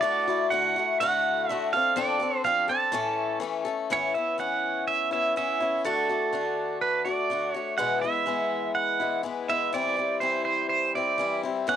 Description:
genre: rock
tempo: 123 BPM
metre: 4/4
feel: straight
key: unclear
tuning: A4 = 440 Hz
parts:
  - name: pedal steel guitar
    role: melody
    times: 0.0-11.8 s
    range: A4 to A5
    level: -25 LUFS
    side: right 5 dB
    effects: cassette tape
  - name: picked swing-style acoustic guitar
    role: accompaniment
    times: 0.0-11.8 s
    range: E2 to A4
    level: -28 LUFS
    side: left 7 dB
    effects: cassette tape
room: light reverb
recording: home recording on cassette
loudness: -24 LUFS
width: side -9 dB against mid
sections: 0.0-3.9 A section; 3.9-11.8 B section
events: none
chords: 0.0 Dadd9; 1.7 F6; 2.9 A; 3.9 Aadd9; 5.8 D; 7.8 E; 9.7 C/E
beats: | 0.02 0.51 0.99 1.48 | 1.96 2.44 2.93 3.42 | 3.90 4.39 4.87 5.36 | 5.84 6.33 6.82 7.30 | 7.79 8.28 8.77 9.25 | 9.74 10.22 10.71 11.20 | 11.68

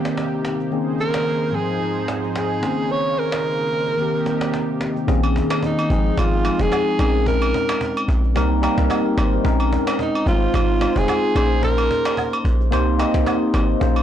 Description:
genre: afrobeats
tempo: 110 BPM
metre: 4/4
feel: swing 55% on 16ths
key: Bb dorian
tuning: A4 = 439 Hz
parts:
  - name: mellow tine electric piano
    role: accompaniment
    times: 0.0-14.0 s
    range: Ab2 to G5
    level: -22 LUFS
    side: left 2 dB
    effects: phaser
  - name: warm analog pad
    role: sustained chords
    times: 0.0-5.1 s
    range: Ab2 to C5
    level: -28 LUFS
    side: right 3 dB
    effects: chorus, tremolo
  - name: cajon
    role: drums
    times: 0.1-13.9 s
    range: none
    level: -30 LUFS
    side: equal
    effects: none
  - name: warm alto saxophone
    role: melody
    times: 1.0-12.4 s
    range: Eb4 to Db5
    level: -22 LUFS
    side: right 2 dB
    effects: none
  - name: warm 808-style bass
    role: bass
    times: 5.1-14.0 s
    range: F1 to C2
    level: -19 LUFS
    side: equal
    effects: none
  - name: agogo bells and woodblock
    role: percussion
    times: 5.2-14.0 s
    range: none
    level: -28 LUFS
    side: right 2 dB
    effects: none
room: light reverb, small room ambience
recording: blown-out, overdriven recording, overdrive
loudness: -17 LUFS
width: side -10 dB against mid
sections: 0.0-5.1 A section; 5.1-14.0 B section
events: kick muted 2.9-5.1; tine electric piano fill 8.4-9.4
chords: 0.0 Cm7; 0.7 Bbm11; 1.5 Fm7/Ab; 2.6 Bbm11; 4.0 Cm7; 5.1 Bbm11; 5.9 Fm7/Ab; 7.0 Bbm11; 8.4 Cm7; 9.4 Bbm11; 10.3 Fm7/Ab; 11.4 Bbm11; 12.7 Cm7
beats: 0.17 | 0.72 1.26 1.81 2.36 | 2.90 3.45 3.99 4.54 | 5.08 5.63 6.17 6.72 | 7.26 7.81 8.36 8.90 | 9.45 9.99 10.54 11.08 | 11.63 12.17 12.72 13.27 | 13.81

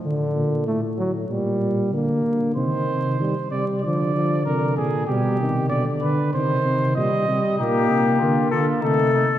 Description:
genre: classical, imitative canzona for brass ensemble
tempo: 96 BPM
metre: 4/4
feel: straight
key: C minor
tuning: A4 = 442 Hz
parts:
  - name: warm trombone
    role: accompaniment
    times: 0.0-9.2 s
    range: D3 to Bb3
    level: -23 LUFS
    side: equal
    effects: none
  - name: mellow tuba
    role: bass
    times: 0.0-9.2 s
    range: A2 to Eb3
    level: -24 LUFS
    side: equal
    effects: none
  - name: mellow trumpet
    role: second line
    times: 2.6-9.3 s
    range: Eb4 to Eb5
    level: -25 LUFS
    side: right 2 dB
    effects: none
  - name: mellow trumpet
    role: melody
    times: 7.6-9.4 s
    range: G4 to A4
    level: -21 LUFS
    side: left 7 dB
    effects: none
room: wet church reverb, RT60 2.5 s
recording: vinyl crackle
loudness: -19 LUFS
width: side -12 dB against mid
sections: 0.0-2.6 A section; 2.6-9.4 B section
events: none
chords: 0.0 D5; 1.3 Gm/Bb; 2.6 Cm; 3.8 Ddim; 5.1 G/B; 6.3 Cm; 7.6 Gm/Bb; 8.8 Adim/C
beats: | 0.03 0.66 1.29 1.92 | 2.56 3.19 3.83 4.46 | 5.08 5.71 6.34 6.96 | 7.59 8.21 8.84

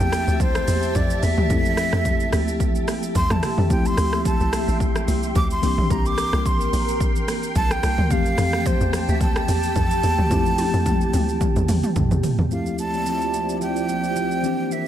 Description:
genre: amapiano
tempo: 109 BPM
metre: 4/4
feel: swing 55% on 16ths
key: D minor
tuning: A4 = 440 Hz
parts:
  - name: breathy jazz flute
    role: melody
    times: 0.0-14.9 s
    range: C5 to D6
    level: -26 LUFS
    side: right 2 dB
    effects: analog delay
  - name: mellow tine electric piano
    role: accompaniment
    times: 0.0-14.9 s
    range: D2 to A4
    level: -26 LUFS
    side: left 3 dB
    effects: medium stereo tremolo, analog delay
  - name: soft string machine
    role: sustained chords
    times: 0.0-14.9 s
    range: E3 to C6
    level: -28 LUFS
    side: equal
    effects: ensemble chorus, sidechain pumping
  - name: tight log drum bass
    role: bass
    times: 0.0-12.5 s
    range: A1 to F2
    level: -23 LUFS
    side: equal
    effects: none
  - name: deep house drum kit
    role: drums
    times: 0.0-14.9 s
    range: hi-hat, kick drum, rim click, shaker, toms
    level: -24 LUFS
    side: equal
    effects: overdrive
  - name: congas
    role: percussion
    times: 0.1-14.6 s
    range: none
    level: -32 LUFS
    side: right 8 dB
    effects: analog delay
room: little or no reverb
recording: echo-heavy mix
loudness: -18 LUFS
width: side -11 dB against mid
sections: 0.0-12.5 A section; 12.5-14.9 B section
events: drop 0.0-12.5; drum fill 10.3-12.5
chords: 0.0 Fmaj9; 3.7 Dm11; 5.6 C7; 8.1 Dm11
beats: 0.40 0.95 | 1.50 2.05 2.60 3.15 | 3.70 4.25 4.80 5.35 | 5.91 6.46 7.01 7.56 | 8.11 8.66 9.21 9.76 | 10.31 10.86 11.41 11.96 | 12.51 13.06 13.61 14.16 | 14.71

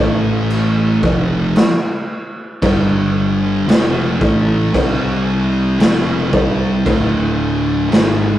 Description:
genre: stoner and doom metal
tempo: 57 BPM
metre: 4/4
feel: straight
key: unclear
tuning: A4 = 439 Hz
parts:
  - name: thick fuzz guitar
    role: riff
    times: 0.0-8.4 s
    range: D2 to C4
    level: -20 LUFS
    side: left 5 dB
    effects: distortion
  - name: thick fuzz guitar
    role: riff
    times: 0.0-8.4 s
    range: D2 to C4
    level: -18 LUFS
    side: right 3 dB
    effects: distortion
  - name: growling fingered electric bass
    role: bass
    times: 0.0-8.4 s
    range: D1 to C2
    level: -22 LUFS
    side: equal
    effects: overdrive
  - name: raw garage drum kit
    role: drums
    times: 0.5-8.2 s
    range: crash cymbal, kick drum, snare drum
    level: -17 LUFS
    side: equal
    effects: none
room: light reverb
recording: rough rehearsal-room recording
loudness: -13 LUFS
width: side -13 dB against mid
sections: 0.0-8.4 A section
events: none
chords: 0.0 A5; 1.0 F5; 2.6 G5; 3.7 F5; 4.7 C5; 5.8 F5; 6.9 D5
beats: 0.50 1.56 | 2.62 3.68 4.74 5.79 | 6.85 7.91

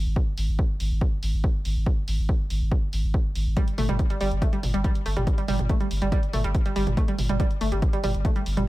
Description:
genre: driving peak-time techno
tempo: 141 BPM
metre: 4/4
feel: straight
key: unclear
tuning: A4 = 440 Hz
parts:
  - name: saturated sub bass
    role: bass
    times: 0.0-8.7 s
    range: G1 to Ab1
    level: -26 LUFS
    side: equal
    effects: overdrive, sidechain pumping, low-pass filter
  - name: electronic kick drum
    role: drums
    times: 0.2-8.3 s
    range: none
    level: -24 LUFS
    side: equal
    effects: studio reverb
  - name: punchy analog drum machine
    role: drums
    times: 0.4-8.7 s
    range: hi-hat, toms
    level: -33 LUFS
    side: right 1 dB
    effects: sidechain pumping on hats, studio reverb, sidechain pumping on toms
  - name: analog pluck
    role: riff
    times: 3.6-8.6 s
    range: G3 to A3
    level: -28 LUFS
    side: right 1 dB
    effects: chorus, vintage 12-bit sampler grit, sidechain pumping, ping-pong delay
room: digital ambience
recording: none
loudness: -22 LUFS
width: side -17 dB against mid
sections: 0.0-8.7 A section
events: none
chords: 0.0 N.C.; 3.6 Gsus2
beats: | 0.16 0.59 1.01 1.44 | 1.86 2.29 2.72 3.14 | 3.57 3.99 4.42 4.84 | 5.27 5.70 6.12 6.55 | 6.97 7.40 7.82 8.25

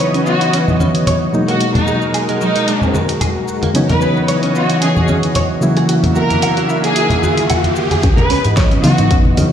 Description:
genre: nu-disco, nu disco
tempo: 112 BPM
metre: 4/4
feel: swing 54% on 16ths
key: C# dorian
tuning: A4 = 441 Hz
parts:
  - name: reed electric piano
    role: accompaniment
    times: 0.0-9.5 s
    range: B2 to E4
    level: -17 LUFS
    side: equal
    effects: fast tremolo, sidechain pumping, low-pass filter
  - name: lush unison pad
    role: sustained chords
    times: 0.0-9.5 s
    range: E3 to E5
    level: -20 LUFS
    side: equal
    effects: chorus, tremolo, sidechain pumping
  - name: direct-recorded clean electric guitar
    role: riff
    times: 0.0-9.4 s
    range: F#3 to F#5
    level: -22 LUFS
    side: right 2 dB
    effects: ensemble chorus, low-pass filter, dub echo
  - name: pop drum kit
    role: drums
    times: 0.0-9.5 s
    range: hi-hat, snare drum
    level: -24 LUFS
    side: equal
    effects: none
  - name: maracas and congas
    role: percussion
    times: 0.0-9.5 s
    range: none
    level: -19 LUFS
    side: left 1 dB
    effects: none
  - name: warm studio violin section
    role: melody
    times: 0.3-9.1 s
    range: D#4 to B4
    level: -20 LUFS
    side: equal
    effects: low-pass filter, dub echo
  - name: riser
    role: sound effects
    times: 6.1-9.5 s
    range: none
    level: -24 LUFS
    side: right 1 dB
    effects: none
  - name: fingered electric bass with an envelope filter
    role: bass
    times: 8.0-9.5 s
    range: C#2 to C#3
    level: -17 LUFS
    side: equal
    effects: none
  - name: electronic kick drum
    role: drums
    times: 8.0-9.2 s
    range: none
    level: -14 LUFS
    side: equal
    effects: none
room: moderate echo chamber reverb, RT60 2.0 s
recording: played on a big sound system in a bare room, large studio reverb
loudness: -12 LUFS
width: side -9 dB against mid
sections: 0.0-8.0 A section; 8.0-9.5 B section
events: riser 6.1-8.0, 8.0-9.5; build-up 8.0-9.5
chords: 0.0 C#m11; 1.3 G#m9; 3.7 C#m11; 5.6 F#7; 8.0 C#m11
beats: 0.00 0.53 1.07 | 1.60 2.14 2.68 3.21 | 3.75 4.28 4.82 5.36 | 5.89 6.43 6.96 7.50 | 8.03 8.57 9.11

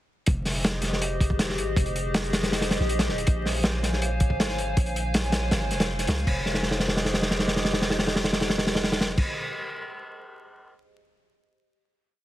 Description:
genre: drum and bass, jungle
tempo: 160 BPM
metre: 4/4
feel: straight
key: F minor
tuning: A4 = 439 Hz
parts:
  - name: warbly tape-like pad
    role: sustained chords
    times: 0.6-9.2 s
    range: G4 to Ab5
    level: -32 LUFS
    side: equal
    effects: chorus, built-in reverb
  - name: long sustained 808-style bass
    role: bass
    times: 0.3-9.2 s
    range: Eb1 to Db2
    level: -30 LUFS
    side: equal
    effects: none
  - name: crunchy breakbeat drum kit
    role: drums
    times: 0.3-10.7 s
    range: crash cymbal, hi-hat, kick drum, snare drum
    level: -24 LUFS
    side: equal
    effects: none
room: light reverb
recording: heavily compressed radio sound, vinyl crackle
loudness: -23 LUFS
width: side -14 dB against mid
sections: 0.3-6.3 drop; 6.3-9.3 final chord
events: drop 0.3-6.3; drum fill 6.5-9.2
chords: 0.3 Fm9; 3.3 Bbm9; 6.3 Fm9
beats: | 0.27 0.64 1.02 1.39 | 1.77 2.14 2.52 2.89 | 3.27 3.64 4.02 4.39 | 4.77 5.14 5.52 5.89 | 6.27 6.64 7.02 7.39 | 7.77 8.14 8.52 8.89

